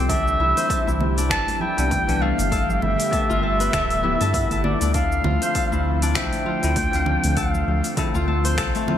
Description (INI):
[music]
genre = organic downtempo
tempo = 99 BPM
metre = 4/4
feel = swing 57% on 16ths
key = D dorian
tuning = A4 = 438 Hz
[part]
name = airy breathy pad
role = sustained chords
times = 0.0-9.0 s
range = D3 to G4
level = -30 LUFS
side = equal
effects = chorus, sidechain pumping
[part]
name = concert harp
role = arpeggios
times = 0.0-9.0 s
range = A3 to C5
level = -27 LUFS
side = left 3 dB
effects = ping-pong delay
[part]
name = round analog bass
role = bass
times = 0.0-8.7 s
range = D1 to G2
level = -24 LUFS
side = equal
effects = sidechain pumping
[part]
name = warm clarinet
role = melody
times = 0.1-8.0 s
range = D5 to A5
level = -24 LUFS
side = equal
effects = ping-pong delay
[part]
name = deep house drum kit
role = drums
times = 0.1-9.0 s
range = cabasa, congas, finger snaps, hi-hat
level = -28 LUFS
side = right 2 dB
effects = overdrive, gated reverb
[part]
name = electronic kick drum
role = drums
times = 0.1-8.7 s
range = none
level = -28 LUFS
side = equal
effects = overdrive
[part]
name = congas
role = percussion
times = 0.6-9.0 s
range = none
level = -33 LUFS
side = left 1 dB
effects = none
[part]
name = bell-like tine electric piano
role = accompaniment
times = 1.3-9.0 s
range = E3 to F5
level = -30 LUFS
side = left 2 dB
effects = wide subtle chorus, sidechain pumping, ping-pong delay
[sound]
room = moderate plate reverb, RT60 1.9 s, digital ambience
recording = bright 1980s-style digital production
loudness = -18 LUFS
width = side -10 dB against mid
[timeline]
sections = 0.0-9.0 A section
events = none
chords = 0.1 Cmaj7; 2.5 Gadd9; 4.9 Dm7